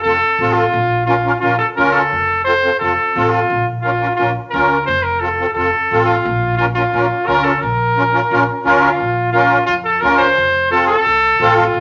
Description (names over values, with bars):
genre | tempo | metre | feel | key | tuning
latin, cumbia | 174 BPM | 4/4 | straight | Bb harmonic minor | A4 = 445 Hz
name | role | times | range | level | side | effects
warm trumpet | melody | 0.0-11.8 s | F4 to C5 | -17 LUFS | equal | none
musette accordion | accompaniment | 0.0-11.6 s | C4 to Bb4 | -19 LUFS | equal | none
upright bass | bass | 0.1-11.8 s | F1 to F2 | -27 LUFS | equal | none
room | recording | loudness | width
wet club reverb, RT60 0.8 s | nothing above 7.6 kHz | -15 LUFS | mono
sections
0.0-9.0 A section; 9.0-11.8 B section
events
none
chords
0.0 F; 0.7 Bbm; 2.1 F; 3.5 Bbm; 4.9 F; 6.2 Bbm; 10.4 F